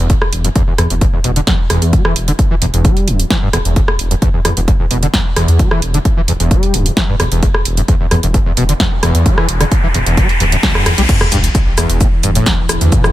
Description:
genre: driving peak-time techno.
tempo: 131 BPM.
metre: 4/4.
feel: straight.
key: E minor.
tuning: A4 = 442 Hz.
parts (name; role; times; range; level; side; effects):
overdriven acid bass; riff; 0.0-13.1 s; E1 to G3; -17 LUFS; equal; distortion, ensemble chorus, sidechain pumping, ping-pong delay.
dark detuned saw bass; bass; 0.0-13.0 s; D1 to E2; -16 LUFS; equal; sidechain pumping.
electronic kick drum; drums; 0.1-13.0 s; none; -14 LUFS; equal; none.
techno drum kit; drums; 0.1-13.1 s; crash cymbal, hi-hat, rim click, shaker, snare drum; -18 LUFS; right 1 dB; sidechain pumping on hats, sidechain pumping on cymbals, sidechain pumping on perc.
riser and sub drop; sound effects; 8.7-12.9 s; none; -20 LUFS; equal; none.
deep dark ambient pad; drone; 11.5-13.1 s; E3; -24 LUFS; left 2 dB; chorus, built-in reverb, sidechain pumping.
room: digital ambience.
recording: none.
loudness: -11 LUFS.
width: side -15 dB against mid.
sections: 0.0-11.1 A section; 11.1-13.1 B section.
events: riser 8.7-11.1; drop 11.1-13.1; impact 11.1-12.9.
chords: 0.0 E5.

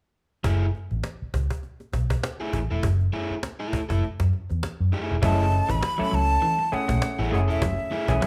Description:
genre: funk.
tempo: 100 BPM.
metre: 4/4.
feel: swing 56% on 16ths.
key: F# minor.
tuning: A4 = 440 Hz.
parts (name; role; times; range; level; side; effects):
crunchy overdriven guitar; accompaniment; 0.4-8.1 s; A3 to A4; -33 LUFS; equal; none.
vintage muted fingered electric bass; bass; 0.4-8.2 s; E1 to F#2; -27 LUFS; equal; none.
cajon; drums; 0.4-8.3 s; none; -33 LUFS; equal; none.
breathy jazz flute; melody; 5.2-8.3 s; E5 to B5; -28 LUFS; equal; none.
electric guitar at the edge of break-up; riff; 5.2-8.3 s; E3 to A3; -34 LUFS; equal; none.
overdriven clav; stabs; 5.2-8.3 s; G#3 to A4; -32 LUFS; equal; none.
room: moderate large studio reverb, RT60 0.8 s.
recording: band playing live in one room.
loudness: -25 LUFS.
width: mono.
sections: 0.4-5.2 A section; 5.2-8.3 B section.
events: none.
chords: 0.4 F#m9.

